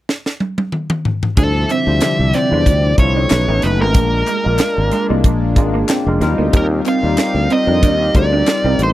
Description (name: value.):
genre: polished 1980s jazz-funk pop.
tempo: 93 BPM.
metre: 4/4.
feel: swing 54% on 16ths.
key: unclear.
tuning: A4 = 437 Hz.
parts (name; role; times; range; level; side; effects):
crisp fusion drum kit; drums; 0.1-8.9 s; hi-hat, kick drum, snare drum, toms; -15 LUFS; equal; none.
nasal lead guitar with a parked wah; melody; 1.4-8.9 s; A4 to F5; -18 LUFS; right 1 dB; overdrive.
tine electric piano; accompaniment; 1.4-8.9 s; F#3 to Bb5; -21 LUFS; left 3 dB; medium stereo tremolo, lush chorus.
chorused pulse-width pad; sustained chords; 1.4-8.9 s; C3 to E5; -24 LUFS; left 1 dB; none.
electric guitar through a small old amp; riff; 1.4-8.8 s; Ab3 to Eb4; -22 LUFS; right 4 dB; ensemble chorus.
sustaining fretless electric bass; bass; 1.4-8.9 s; F1 to F2; -17 LUFS; equal; none.
group handclap; percussion; 1.7-8.6 s; none; -27 LUFS; left 7 dB; none.
room: light reverb.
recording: dry, close 1970s-style studio recording.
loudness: -13 LUFS.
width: side -15 dB against mid.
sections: 0.0-1.4 A section; 1.4-8.9 B section.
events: drum fill 0.1-1.4; tine electric piano fill 5.2-6.5.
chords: 0.0 N.C.; 1.4 Dm11; 3.3 B9; 4.0 Bb7; 6.2 Eb69.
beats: 0.08 0.73 | 1.37 2.02 2.66 3.31 | 3.95 4.60 5.24 5.89 | 6.53 7.18 7.83 8.47.